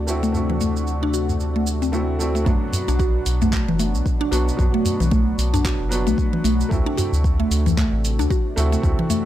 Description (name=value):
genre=organic downtempo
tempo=113 BPM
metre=4/4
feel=swing 58% on 16ths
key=unclear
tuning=A4 = 440 Hz
part: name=felt-muted upright piano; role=accompaniment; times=0.0-9.3 s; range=F#3 to F#4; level=-28 LUFS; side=right 2 dB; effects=sidechain pumping, analog delay
part: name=warm analog pad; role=sustained chords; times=0.0-9.3 s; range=B2 to F#4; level=-30 LUFS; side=equal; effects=chorus, sidechain pumping
part: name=mallet-like synth pluck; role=arpeggios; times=0.0-9.2 s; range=E3 to F#4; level=-24 LUFS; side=left 1 dB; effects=chorus, phaser, analog delay
part: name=round analog bass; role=bass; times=0.0-8.9 s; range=F#1 to D2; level=-22 LUFS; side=equal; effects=none
part: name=deep house drum kit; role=drums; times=0.1-9.2 s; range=handclaps, hi-hat, shaker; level=-31 LUFS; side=right 2 dB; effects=none
part: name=udu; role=percussion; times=0.3-9.2 s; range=none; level=-26 LUFS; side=equal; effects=none
part: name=electronic kick drum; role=drums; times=2.5-9.0 s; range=none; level=-22 LUFS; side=equal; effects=none
room=little or no reverb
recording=dry, gritty hardware recording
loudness=-18 LUFS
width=side -12 dB against mid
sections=0.0-2.5 A section; 2.5-9.3 B section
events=none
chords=0.0 D7; 2.5 Bm; 6.7 D7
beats=| 0.34 0.87 1.40 1.93 | 2.46 2.99 3.52 4.06 | 4.59 5.12 5.65 6.18 | 6.71 7.24 7.77 8.30 | 8.84